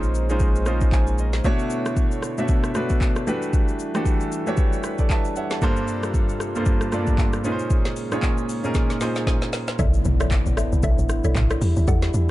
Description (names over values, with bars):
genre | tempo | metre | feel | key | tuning
amapiano | 115 BPM | 4/4 | swing 58% on 16ths | unclear | A4 = 441 Hz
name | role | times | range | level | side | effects
clear concert grand piano | accompaniment | 0.0-9.8 s | G2 to A5 | -25 LUFS | right 1 dB | none
mellow French horn section | sustained chords | 0.0-12.3 s | C3 to C#5 | -30 LUFS | left 1 dB | sidechain pumping
saturated sub bass | bass | 0.0-1.4 s | A#1 | -23 LUFS | equal | none
afro-pop drum kit | drums | 0.0-12.3 s | handclaps, hi-hat, kick drum, rim click, shaker, snare drum, toms | -22 LUFS | equal | none
mallet-like synth pluck | stabs | 9.8-12.3 s | G4 to F#5 | -30 LUFS | left 1 dB | chorus, ping-pong delay
woody log drum bass | bass | 9.8-12.3 s | A1 to E2 | -20 LUFS | equal | none
impact | sound effects | 9.8-11.9 s | none | -29 LUFS | equal | none
room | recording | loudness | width
little or no reverb | dark, warm production, nothing above 10.9 kHz | -19 LUFS | side -16 dB against mid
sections
0.0-9.8 A section; 9.8-12.3 B section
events
grand piano fill 0.7-1.4, 4.8-5.6; drum fill 8.8-9.8; drop 9.8-12.3; impact 9.8-11.9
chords
0.0 A#m11; 1.4 Bm11; 3.3 Em11; 5.6 Gm11; 7.4 A#m11; 9.8 Bm11; 11.6 Em11